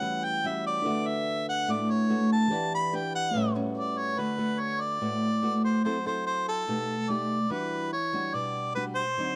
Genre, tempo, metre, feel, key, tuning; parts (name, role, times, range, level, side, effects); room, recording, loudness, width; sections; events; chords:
bossa nova; 144 BPM; 4/4; straight; D major; A4 = 441 Hz
mellow harmonica; melody; 0.0-9.4 s; A4 to B5; -32 LUFS; equal
bell-like tine electric piano; accompaniment; 0.0-4.2 s; E3 to F#5; -37 LUFS; equal
nylon-string guitar; accompaniment; 0.0-9.4 s; A2 to B4; -32 LUFS; equal
light reverb; -28 LUFS; mono
0.0-4.2 A section; 4.2-9.4 B section
harmonica solo 0.0-4.2
0.0 A13; 0.8 D6; 2.5 Em7; 3.3 A13; 4.2 D6; 5.8 F#m7b5; 6.7 B7alt; 7.5 Em9